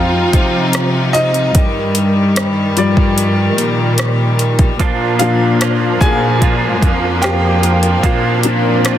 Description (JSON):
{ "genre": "pop ballad", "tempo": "74 BPM", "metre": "4/4", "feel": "straight", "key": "Eb major", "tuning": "A4 = 444 Hz", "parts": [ { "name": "clear upright piano", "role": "accompaniment", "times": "0.0-9.0 s", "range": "F3 to Ab5", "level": "-18 LUFS", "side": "left 2 dB", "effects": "none" }, { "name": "rich symphonic string section", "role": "sustained chords", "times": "0.0-9.0 s", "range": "Eb3 to F4", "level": "-18 LUFS", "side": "equal", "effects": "none" }, { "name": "warm studio cello section", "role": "bass", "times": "0.0-9.0 s", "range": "F2 to C3", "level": "-16 LUFS", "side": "equal", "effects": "none" }, { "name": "deep house drum kit", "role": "drums", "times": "0.3-9.0 s", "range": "hi-hat, kick drum, rim click", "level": "-16 LUFS", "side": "equal", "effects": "soft clipping on snare" }, { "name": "direct-recorded clean electric guitar", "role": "arpeggios", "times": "4.8-9.0 s", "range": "Bb2 to F4", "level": "-19 LUFS", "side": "right 7 dB", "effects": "ensemble chorus, digital delay" }, { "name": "swell", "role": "sound effects", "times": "7.5-9.0 s", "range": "none", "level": "-25 LUFS", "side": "equal", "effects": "none" } ], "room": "light reverb", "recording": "dense, heavily limited modern master", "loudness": "-11 LUFS", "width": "side -11 dB against mid", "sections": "0.0-9.0 A section", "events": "upright piano solo 0.0-9.0; swell 7.5-9.0", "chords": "0.0 Fm7; 1.6 Ebmaj7/G; 4.8 Bb", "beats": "0.74 | 1.55 2.36 3.17 3.98 | 4.80 5.61 6.42 7.23 | 8.04 8.85" }